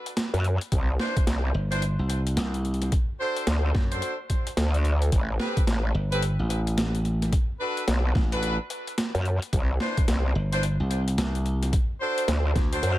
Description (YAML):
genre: glitch hop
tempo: 109 BPM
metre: 4/4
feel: swing 62% on 16ths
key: unclear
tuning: A4 = 440 Hz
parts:
  - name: boom bap sampler-style drum kit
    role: drums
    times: 0.1-13.0 s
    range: hi-hat, snare drum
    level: -31 LUFS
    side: equal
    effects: overdrive
  - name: growl bass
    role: bass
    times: 0.3-13.0 s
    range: A1 to F#2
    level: -23 LUFS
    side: equal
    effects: chorus, tube saturation
  - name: electronic kick drum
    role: drums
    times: 0.7-12.7 s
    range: none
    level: -24 LUFS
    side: equal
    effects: overdrive
  - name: bright horn section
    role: stabs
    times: 1.0-13.0 s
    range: C4 to C5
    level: -31 LUFS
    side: equal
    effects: vintage 12-bit sampler grit, sidechain pumping, tape echo
  - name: slap bass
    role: bass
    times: 1.5-12.8 s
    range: G1 to F#2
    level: -25 LUFS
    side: equal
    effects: none
room: digital ambience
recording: echo-heavy mix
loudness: -23 LUFS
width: side -15 dB against mid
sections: 0.0-13.0 A section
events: kick drops out 12.8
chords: 0.0 N.C.; 0.7 Cmaj9; 2.9 D7; 5.1 Am9; 7.3 Bm7; 9.5 Cmaj9; 11.7 D7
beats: 0.17 | 0.72 1.27 1.82 2.37 | 2.92 3.47 4.02 4.57 | 5.12 5.67 6.22 6.77 | 7.33 7.88 8.43 8.98 | 9.53 10.08 10.63 11.18 | 11.73 12.28 12.83